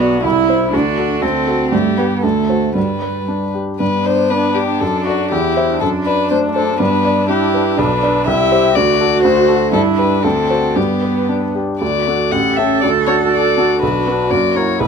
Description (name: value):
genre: quick classical-period movement for piano quartet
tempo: 121 BPM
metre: 2/4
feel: rubato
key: G major, D major from 11.8 s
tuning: A4 = 439 Hz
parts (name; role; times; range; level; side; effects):
- warm violin; melody; 0.0-14.9 s; E4 to F#5; -18 LUFS; left 7 dB; none
- warm cello; second line; 0.0-14.9 s; G3 to A4; -19 LUFS; right 6 dB; none
- clear baby grand piano; accompaniment; 0.0-14.9 s; A1 to E5; -17 LUFS; equal; none
- warm viola; accompaniment; 3.8-14.9 s; A3 to G4; -22 LUFS; right 3 dB; none
room: light reverb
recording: none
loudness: -13 LUFS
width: side -6 dB against mid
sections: 0.0-3.8 A section; 3.8-11.8 A section; 11.8-14.9 B section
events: none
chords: 0.2 C; 0.7 D; 1.7 G; 2.2 D7; 2.8 G; 4.8 D/F#; 5.3 C/E; 5.8 D7/F#; 6.8 G; 7.8 Bm; 8.3 C; 8.8 D; 9.7 G; 10.2 D7; 10.8 G; 11.8 D; 12.3 A7; 12.8 D; 13.8 Bm; 14.3 F#7